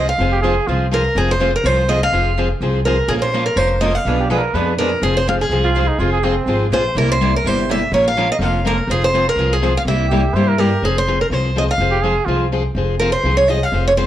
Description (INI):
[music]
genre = acoustic string swing (jazz manouche)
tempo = 248 BPM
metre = 4/4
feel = swing 56% on 8ths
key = F minor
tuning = A4 = 441 Hz
[part]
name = picked steel-string acoustic guitar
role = melody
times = 0.0-14.1 s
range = Ab4 to F5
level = -18 LUFS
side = right 1 dB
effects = slapback echo
[part]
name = picked steel-string acoustic guitar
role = accompaniment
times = 0.0-14.1 s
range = B2 to B4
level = -21 LUFS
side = left 3 dB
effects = none
[part]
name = picked steel-string acoustic guitar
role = accompaniment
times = 0.0-10.7 s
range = B2 to C5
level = -26 LUFS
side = right 5 dB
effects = none
[part]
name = upright bass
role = bass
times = 0.0-14.1 s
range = F1 to G2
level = -19 LUFS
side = equal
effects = tube saturation
[part]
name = breathy trumpet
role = second line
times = 0.3-0.9, 4.2-6.7, 10.1-12.5 s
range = C4 to C5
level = -21 LUFS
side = right 4 dB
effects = none
[sound]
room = moderate studio reverb, RT60 0.7 s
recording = worn, warbling old tape, cassette tape, warbly pitch drift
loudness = -14 LUFS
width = side -12 dB against mid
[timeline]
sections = 0.0-10.8 A section; 10.8-14.1 A section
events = none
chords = 0.0 Fm; 3.1 Bbm; 4.1 Bdim7; 5.0 Fm; 7.0 C7; 7.9 Bbm; 8.9 Fm; 9.9 C7; 10.8 Fm